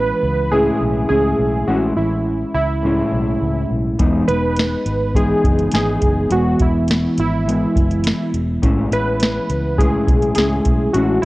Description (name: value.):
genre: indie pop, bedroom pop.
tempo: 104 BPM.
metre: 4/4.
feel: straight.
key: unclear.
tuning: A4 = 440 Hz.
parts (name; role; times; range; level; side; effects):
warm analog keys; melody; 0.0-11.2 s; E4 to B4; -20 LUFS; right 1 dB; analog chorus.
mellow electric guitar; accompaniment; 0.0-11.2 s; A2 to E4; -19 LUFS; left 1 dB; lush chorus, vibrato effect.
vintage muted fingered electric bass; bass; 0.0-11.2 s; E1 to C#2; -22 LUFS; equal; none.
soft vintage rhythm box; drums; 4.0-11.1 s; hi-hat, kick drum, snare drum; -19 LUFS; equal; vintage 12-bit sampler grit.
room: light reverb, digital ambience.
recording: worn, warbling old tape, cassette tape, warbly pitch drift.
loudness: -15 LUFS.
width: side -19 dB against mid.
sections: 0.0-11.2 A section.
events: none.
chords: 0.0 Amaj7; 4.0 Emaj7; 8.6 Amaj7.